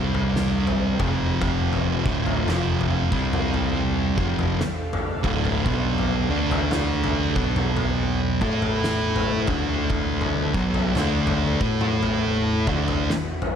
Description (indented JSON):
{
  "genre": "stoner and doom metal",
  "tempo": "56 BPM",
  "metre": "4/4",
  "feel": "swing 60% on 8ths",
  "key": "D dorian",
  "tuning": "A4 = 439 Hz",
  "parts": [
    { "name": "bowed-like drone", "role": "sustained chords", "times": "0.0-13.6 s", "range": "B3 to F#5", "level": "-34 LUFS", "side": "right 1 dB", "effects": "built-in reverb" },
    { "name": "thick fuzz guitar", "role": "riff", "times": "0.0-13.1 s", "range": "D2 to A4", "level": "-26 LUFS", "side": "left 9 dB", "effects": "distortion" },
    { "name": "thick fuzz guitar", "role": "riff", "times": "0.0-13.1 s", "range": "D2 to A4", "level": "-25 LUFS", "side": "right 8 dB", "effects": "distortion" },
    { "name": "fingered electric bass", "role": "bass", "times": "0.0-13.1 s", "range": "D1 to A2", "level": "-28 LUFS", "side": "equal", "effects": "overdrive" },
    { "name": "oversized low-tuned drum kit", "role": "drums", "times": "0.1-13.6 s", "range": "kick drum, snare drum, toms", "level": "-26 LUFS", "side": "equal", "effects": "none" }
  ],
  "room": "light reverb",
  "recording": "none",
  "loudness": "-20 LUFS",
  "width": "side -8 dB against mid",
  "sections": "0.0-13.6 A section",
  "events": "none",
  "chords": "0.0 C5; 0.9 F5; 1.9 Dm; 3.0 C5; 4.1 Dm; 5.7 B5; 6.2 D5; 7.2 B5; 8.3 A5; 9.4 D5; 10.4 B5; 11.5 A5; 12.6 B5",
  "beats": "0.35 | 1.41 2.47 3.53 4.59 | 5.66 6.72 7.78 8.84 | 9.90 10.97 12.03 13.10"
}